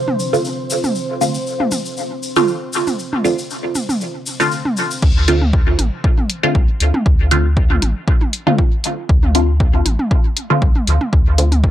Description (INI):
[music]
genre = dub techno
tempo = 118 BPM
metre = 4/4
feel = swing 54% on 16ths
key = D minor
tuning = A4 = 440 Hz
[part]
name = deep dark ambient pad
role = sustained chords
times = 0.0-5.0 s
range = C4 to C5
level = -26 LUFS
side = equal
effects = chorus, built-in reverb, sidechain pumping
[part]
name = electronic toms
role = percussion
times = 0.1-11.6 s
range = none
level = -23 LUFS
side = right 1 dB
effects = overdrive, sidechain pumping on toms, dub echo
[part]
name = tube shaker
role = percussion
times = 0.2-5.0 s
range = none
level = -27 LUFS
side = left 4 dB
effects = none
[part]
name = filtered dub chord stab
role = stabs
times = 0.3-11.5 s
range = D3 to F4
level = -19 LUFS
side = right 1 dB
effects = phaser, sidechain pumping, dub echo
[part]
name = round analog bass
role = bass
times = 5.0-11.7 s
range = A1 to D2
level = -16 LUFS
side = equal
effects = sidechain pumping
[part]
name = deep house drum kit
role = drums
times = 5.0-11.6 s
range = crash cymbal, hi-hat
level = -22 LUFS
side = left 1 dB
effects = none
[part]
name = electronic kick drum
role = drums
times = 5.0-11.7 s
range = none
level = -14 LUFS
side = equal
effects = none
[sound]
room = little or no reverb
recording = dry, gritty hardware recording, cassette tape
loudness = -14 LUFS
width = side -12 dB against mid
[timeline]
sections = 0.0-5.0 A section; 5.0-11.7 B section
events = filter sweep on synth stab 0.0-5.0; filter sweep on ambient pad 0.0-5.0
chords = 0.0 Dm7